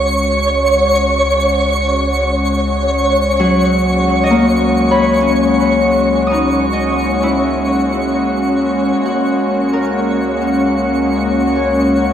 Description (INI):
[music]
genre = ambient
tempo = free time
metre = none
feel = none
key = C# dorian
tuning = A4 = 439 Hz
[part]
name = warm analog pad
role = sustained chords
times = 0.0-12.1 s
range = G#3 to F#4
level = -16 LUFS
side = equal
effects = wide subtle chorus
[part]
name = Celtic harp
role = arpeggios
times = 0.0-12.1 s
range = F#3 to D#6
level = -16 LUFS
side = left 2 dB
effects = tape echo
[part]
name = warm sub bass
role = bass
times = 0.0-12.1 s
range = C#2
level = -23 LUFS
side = equal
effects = none
[part]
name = twinkling granular texture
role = texture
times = 0.0-12.1 s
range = C#5 to C#6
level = -17 LUFS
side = right 1 dB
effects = built-in reverb
[sound]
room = wet lush hall reverb, RT60 2.7 s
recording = studio reverb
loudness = -12 LUFS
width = side -9 dB against mid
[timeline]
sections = 0.0-12.1 A section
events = fade-in on analog synth pad 0.0-12.1; fade-out on synth texture 0.0-12.1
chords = 0.0 C#m7; 9.0 F#13/C#